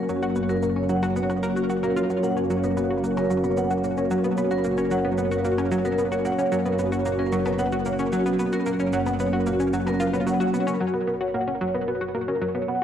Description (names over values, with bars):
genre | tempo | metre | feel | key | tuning
ambient, sequencer-driven space music | 112 BPM | 4/4 | straight | F# major | A4 = 441 Hz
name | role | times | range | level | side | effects
sweeping resonant pad | sustained chords | 0.0-12.8 s | F#3 to C#4 | -25 LUFS | equal | chorus
analog pluck | riff | 0.0-12.8 s | F#3 to A#4 | -27 LUFS | equal | chorus, vintage 12-bit sampler grit, tape echo
fat analog bass | bass | 0.0-12.8 s | F#1 | -34 LUFS | equal | transformer saturation
vibraphone with medium mallets | arpeggios | 0.1-12.8 s | F#4 to F#5 | -28 LUFS | equal | auto-pan, low-pass filter, tape echo
shaker and percussion blips | percussion | 0.1-10.8 s | none | -44 LUFS | equal | overdrive, cassette tape, tape echo
room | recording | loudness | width
wet digital room reverb, RT60 1.0 s | home recording on cassette | -22 LUFS | side -9 dB against mid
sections
0.0-10.8 A section; 10.8-12.8 B section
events
fade-in on drum 0.0-10.8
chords
0.0 F#